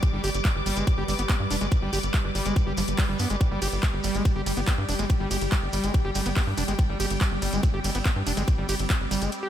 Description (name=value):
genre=psychedelic trance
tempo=142 BPM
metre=4/4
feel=straight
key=G major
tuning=A4 = 438 Hz
part: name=evolving wavetable pad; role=sustained chords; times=0.0-9.5 s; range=G3 to B4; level=-33 LUFS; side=right 1 dB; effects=chorus, built-in reverb, sidechain pumping
part: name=drum and bass drum kit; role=drums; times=0.0-9.4 s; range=handclaps, hi-hat, ride cymbal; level=-33 LUFS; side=equal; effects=overdrive, small room ambience
part: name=electronic kick drum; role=drums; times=0.0-9.0 s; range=none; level=-25 LUFS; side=equal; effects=small room ambience
part: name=shekere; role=percussion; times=0.0-9.4 s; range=none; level=-37 LUFS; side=right 4 dB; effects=none
part: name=warm symphonic string section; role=texture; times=0.0-9.5 s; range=G3 to D6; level=-34 LUFS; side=left 2 dB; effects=sidechain pumping
part: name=overdriven acid bass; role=riff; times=0.1-9.5 s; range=F3 to G4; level=-32 LUFS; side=right 1 dB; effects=distortion, auto-pan, sidechain pumping, digital delay
part: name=tight sequencer bass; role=bass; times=0.1-9.3 s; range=F1 to G2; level=-29 LUFS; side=equal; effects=tube saturation
room=digital ambience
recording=none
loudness=-23 LUFS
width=side -11 dB against mid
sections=0.0-9.5 A section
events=break 9.3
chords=0.0 G5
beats=| 0.03 0.45 0.87 1.29 | 1.72 2.14 2.56 2.98 | 3.41 3.83 4.25 4.67 | 5.10 5.52 5.94 6.37 | 6.79 7.21 7.63 8.05 | 8.48 8.90 9.32